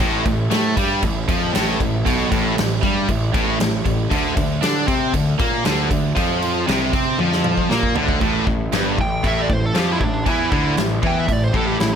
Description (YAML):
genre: heavy metal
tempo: 117 BPM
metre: 4/4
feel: straight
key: A phrygian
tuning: A4 = 440 Hz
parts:
  - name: distorted electric guitar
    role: riff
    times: 0.0-12.0 s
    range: G2 to D4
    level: -24 LUFS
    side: left 12 dB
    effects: overdrive
  - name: thick fuzz guitar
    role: riff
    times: 0.0-12.0 s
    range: G2 to D4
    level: -26 LUFS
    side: equal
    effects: distortion
  - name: tight distorted guitar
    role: riff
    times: 0.0-12.0 s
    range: G2 to D4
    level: -23 LUFS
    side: right 9 dB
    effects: distortion
  - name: fuzz picked electric bass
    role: bass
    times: 0.0-12.0 s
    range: G1 to D3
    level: -24 LUFS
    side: equal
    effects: overdrive
  - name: big rock drum kit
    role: drums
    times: 0.0-11.9 s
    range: crash cymbal, kick drum, snare drum, toms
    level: -22 LUFS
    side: equal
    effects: none
  - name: high-gain lead guitar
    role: melody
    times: 9.0-12.0 s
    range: D4 to G5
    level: -23 LUFS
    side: right 2 dB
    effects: distortion
room: small room ambience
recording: none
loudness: -16 LUFS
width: side -8 dB against mid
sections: 0.0-8.2 A section; 8.2-12.0 B section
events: drum fill 7.2-8.2; lead electric guitar solo 8.2-12.0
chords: 0.0 G9/A; 4.1 C9sus4; 8.2 A5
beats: | 0.00 0.51 1.02 1.54 | 2.05 2.57 3.08 3.60 | 4.11 4.62 5.14 5.65 | 6.16 6.68 7.19 7.70 | 8.21 8.73 9.24 9.75 | 10.26 10.78 11.29 11.80